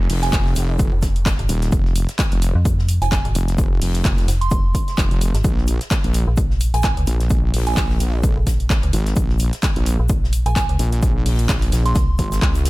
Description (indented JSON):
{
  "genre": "bass house",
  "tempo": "129 BPM",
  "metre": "4/4",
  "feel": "swing 57% on 16ths",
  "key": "F minor",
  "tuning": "A4 = 440 Hz",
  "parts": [
    { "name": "wobble bass", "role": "bass", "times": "0.0-12.7 s", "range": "Eb1 to Db2", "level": "-19 LUFS", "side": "equal", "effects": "chorus, tube saturation, sidechain pumping" },
    { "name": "downlifter", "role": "sound effects", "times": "0.0-1.7 s", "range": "none", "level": "-41 LUFS", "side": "equal", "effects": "none" },
    { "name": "big-room dance drum kit", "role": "drums", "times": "0.1-12.7 s", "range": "handclaps, hi-hat", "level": "-27 LUFS", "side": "equal", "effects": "overdrive" },
    { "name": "loose indie drum kit", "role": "drums", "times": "0.1-12.7 s", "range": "hi-hat, shaker, snare drum", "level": "-36 LUFS", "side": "left 5 dB", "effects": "high-pass filter on hats, high-pass filter on snare, high-pass filter on perc, high-pass filter on room" },
    { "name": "soft synth bell", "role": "melody", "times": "0.2-12.5 s", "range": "Ab5 to C6", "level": "-28 LUFS", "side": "right 4 dB", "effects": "chorus, digital delay" },
    { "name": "electronic kick drum", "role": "drums", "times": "0.3-12.5 s", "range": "none", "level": "-19 LUFS", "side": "equal", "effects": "overdrive" },
    { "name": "metallic FM bass", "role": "bass", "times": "0.9-12.2 s", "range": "F1 to F2", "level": "-19 LUFS", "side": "equal", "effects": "sidechain pumping" }
  ],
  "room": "small room reverb",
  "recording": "none",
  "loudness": "-16 LUFS",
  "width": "side -20 dB against mid",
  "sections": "0.0-12.7 A section",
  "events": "none",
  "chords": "none"
}